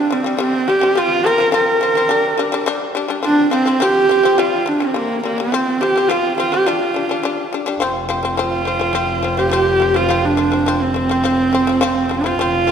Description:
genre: mongolian traditional, Mongolian folk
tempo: 105 BPM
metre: 4/4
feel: straight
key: F zhi mode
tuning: A4 = 437 Hz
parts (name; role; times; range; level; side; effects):
- rich horsehead fiddle; melody; 0.0-12.7 s; Bb3 to Bb4; -16 LUFS; right 2 dB; none
- shamisen; arpeggios; 0.0-12.7 s; C3 to D4; -20 LUFS; left 4 dB; none
- warm double bass; drone; 7.8-12.7 s; F1; -24 LUFS; equal; none
room: wet concert hall reverb, RT60 1.9 s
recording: none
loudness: -14 LUFS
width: side -8 dB against mid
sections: 0.0-7.8 A section; 7.8-12.7 B section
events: none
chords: 0.0 C5; 1.0 F5; 2.1 G5; 3.2 F5; 4.4 C5; 5.5 F5; 6.7 G5; 7.8 F5

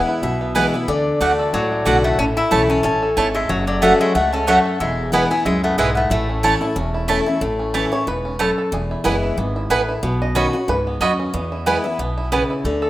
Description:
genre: bluegrass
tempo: 184 BPM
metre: 4/4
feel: swing 55% on 8ths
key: A major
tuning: A4 = 439 Hz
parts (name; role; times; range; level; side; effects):
- bluegrass banjo; melody; 0.0-12.9 s; E3 to D#5; -25 LUFS; equal; none
- mandolin; melody; 0.0-7.0 s; C#5 to B5; -23 LUFS; left 2 dB; none
- picked steel-string acoustic guitar; accompaniment; 0.0-12.9 s; E2 to F#4; -21 LUFS; left 2 dB; none
- upright bass; bass; 0.2-12.9 s; E1 to E2; -25 LUFS; equal; none
- mandolin; stabs; 0.5-12.4 s; A3 to B5; -21 LUFS; right 3 dB; slapback echo
- lap resonator guitar; second line; 1.5-7.1 s; F#3 to E4; -23 LUFS; left 1 dB; none
room: light reverb, studio reverb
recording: rough home demo mix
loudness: -16 LUFS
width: side -15 dB against mid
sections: 0.0-7.4 A section; 7.4-12.9 B section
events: five-string banjo solo 7.4-12.9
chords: 0.0 E; 0.9 D; 2.2 A; 3.5 F#m; 4.8 E; 6.1 A; 8.7 E; 10.0 Badd9; 11.3 E

